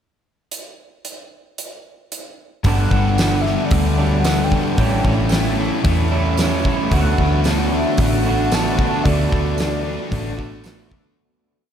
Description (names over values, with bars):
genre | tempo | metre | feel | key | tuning
rock, shoegaze and dream pop | 112 BPM | 4/4 | straight | D major | A4 = 440 Hz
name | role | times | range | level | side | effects
huge arena drum kit | drums | 0.5-11.0 s | hi-hat, kick drum, snare drum | -22 LUFS | equal | none
mellow horn-like synth lead | melody | 2.6-10.6 s | D5 to A5 | -26 LUFS | left 1 dB | chorus, ping-pong delay
cranked stack guitar | riff | 2.6-11.2 s | G2 to D4 | -27 LUFS | left 1 dB | overdrive, lush chorus
thick fuzz guitar | riff | 2.6-11.2 s | G2 to D4 | -25 LUFS | left 6 dB | distortion, analog chorus
vintage muted picked electric bass | bass | 2.6-11.0 s | G1 to E2 | -20 LUFS | equal | none
electric guitar through a small old amp | riff | 2.7-11.2 s | G2 to F#4 | -23 LUFS | right 5 dB | reverse reverb
tambourine | percussion | 3.2-10.8 s | none | -36 LUFS | right 12 dB | none
room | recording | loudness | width
wet cathedral reverb, RT60 6.8 s | dreamy mix soaked in reverb | -15 LUFS | side -8 dB against mid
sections
0.5-2.6 pickup bar; 2.6-11.2 A section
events
fade-out 9.0-11.2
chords
0.5 N.C.; 2.6 Gmaj7; 4.8 A7; 6.9 D6